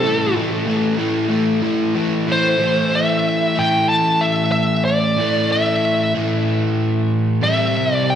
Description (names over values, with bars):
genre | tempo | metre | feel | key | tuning
rock | 93 BPM | 4/4 | straight | A minor | A4 = 440 Hz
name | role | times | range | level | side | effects
bluesy overdriven lead guitar | melody | 0.0-8.2 s | A4 to A5 | -18 LUFS | equal | distortion, slapback echo, digital delay
overdriven semi-hollow guitar | riff | 0.0-8.2 s | A2 to C4 | -18 LUFS | equal | slapback echo
room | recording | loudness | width
moderate club reverb, RT60 0.5 s | live gig heard through the venue's PA, recital hall reverb | -15 LUFS | side -9 dB against mid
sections
0.0-2.6 A section; 2.6-8.2 B section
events
lead electric guitar solo 0.0-2.6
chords
0.0 A5; 7.4 C